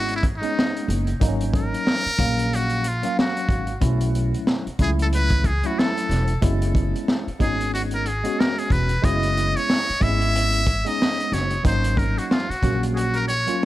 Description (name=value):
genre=hip hop, jazz-hop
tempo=92 BPM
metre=4/4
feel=swing 60% on 16ths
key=F# mixolydian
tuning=A4 = 441 Hz
part: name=trumpet with metal mute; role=melody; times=0.0-13.7 s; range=D#4 to E5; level=-25 LUFS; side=equal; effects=tape echo
part: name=mellow tine electric piano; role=accompaniment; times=0.0-13.7 s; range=F#3 to E#5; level=-27 LUFS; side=equal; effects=overdrive, fast stereo tremolo
part: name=upright bass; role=bass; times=0.0-13.4 s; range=E1 to C#2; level=-23 LUFS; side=equal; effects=none
part: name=crunchy breakbeat drum kit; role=drums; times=0.1-13.6 s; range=hi-hat, kick drum, snare drum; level=-23 LUFS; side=equal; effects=none
room=small room ambience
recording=none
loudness=-19 LUFS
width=side -15 dB against mid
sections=0.0-13.7 A section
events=muted trumpet solo 0.0-13.7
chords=0.0 F#9sus4; 1.2 G#9sus4; 3.8 B9sus4; 6.4 F#9sus4; 11.6 G#9sus4